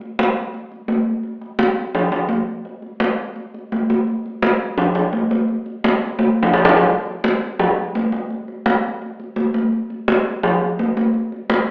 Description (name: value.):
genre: latin.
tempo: 170 BPM.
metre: 4/4.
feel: straight.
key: none.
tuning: none.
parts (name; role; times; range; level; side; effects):
congas; percussion; 0.0-11.7 s; none; -20 LUFS; equal; none.
room: wet stone room reverb, RT60 1.0 s.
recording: band playing live in one room, telephone sound.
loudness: -20 LUFS.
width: mono.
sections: 0.0-6.9 A section; 6.9-11.7 B section.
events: drum fill 6.2-6.9.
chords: none.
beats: 0.18 0.53 0.89 | 1.24 1.59 1.95 2.30 | 2.65 3.01 3.36 3.71 | 4.07 4.42 4.78 5.13 | 5.48 5.83 6.19 6.54 | 6.90 7.25 7.60 7.96 | 8.31 8.66 9.02 9.37 | 9.72 10.08 10.43 10.78 | 11.14 11.49.